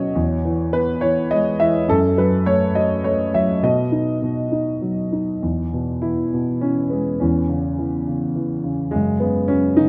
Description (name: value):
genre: classical, lyrical solo piano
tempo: 103 BPM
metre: 3/4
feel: rubato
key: E major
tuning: A4 = 442 Hz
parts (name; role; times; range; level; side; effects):
- dark grand piano; solo; 0.0-9.9 s; E2 to F#5; -20 LUFS; equal; none
room: light reverb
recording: close, detailed microphones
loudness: -20 LUFS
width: mono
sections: 0.0-5.4 A section; 5.4-9.9 B section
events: none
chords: 0.2 E; 1.9 F#m; 3.6 B; 5.4 E; 7.2 C#m/E; 8.9 F#5